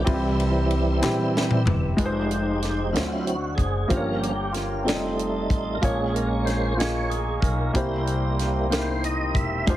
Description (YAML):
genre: slow gospel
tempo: 62 BPM (dotted quarters)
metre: 6/8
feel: straight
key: unclear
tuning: A4 = 440 Hz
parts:
  - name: warm upright piano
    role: accompaniment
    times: 0.0-9.8 s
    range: G2 to Eb5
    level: -27 LUFS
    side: left 1 dB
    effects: none
  - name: tonewheel organ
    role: sustained chords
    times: 0.0-9.8 s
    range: E3 to F5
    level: -27 LUFS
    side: right 2 dB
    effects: slow rotary speaker, overdrive, chorus vibrato
  - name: upright bass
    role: bass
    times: 0.0-9.8 s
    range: E1 to Bb2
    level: -27 LUFS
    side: equal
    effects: none
  - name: tight funk drum kit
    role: drums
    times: 0.1-9.8 s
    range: hi-hat, kick drum, ride cymbal, snare drum, toms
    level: -26 LUFS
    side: equal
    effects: none
  - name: group handclap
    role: percussion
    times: 1.0-1.3 s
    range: none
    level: -31 LUFS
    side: left 5 dB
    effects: none
  - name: glass harmonica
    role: sustained chords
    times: 2.0-9.8 s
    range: E4 to Db6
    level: -34 LUFS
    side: equal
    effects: none
room: light reverb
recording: heavily compressed radio sound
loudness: -21 LUFS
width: side -13 dB against mid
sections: 0.0-2.0 A section; 2.0-9.8 B section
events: tonewheel organ solo 0.0-2.0, 2.0-9.8; drum fill 1.0-2.0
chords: 0.1 C; 2.0 Fm7; 2.9 D7; 3.9 Gm7b5; 4.9 F7; 5.8 Bbm7; 7.8 C7